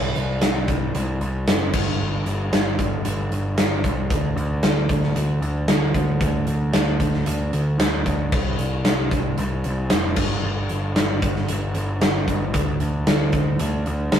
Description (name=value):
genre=classic rock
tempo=114 BPM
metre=4/4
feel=straight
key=unclear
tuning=A4 = 440 Hz
part: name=fuzz picked electric bass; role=bass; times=0.0-14.2 s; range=F1 to D2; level=-22 LUFS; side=equal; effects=overdrive
part: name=big rock drum kit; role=drums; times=0.2-14.2 s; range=crash cymbal, hi-hat, kick drum, snare drum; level=-22 LUFS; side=equal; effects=none
room=light reverb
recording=rough rehearsal-room recording, tube saturation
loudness=-19 LUFS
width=side -9 dB against mid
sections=0.0-14.2 A section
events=none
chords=none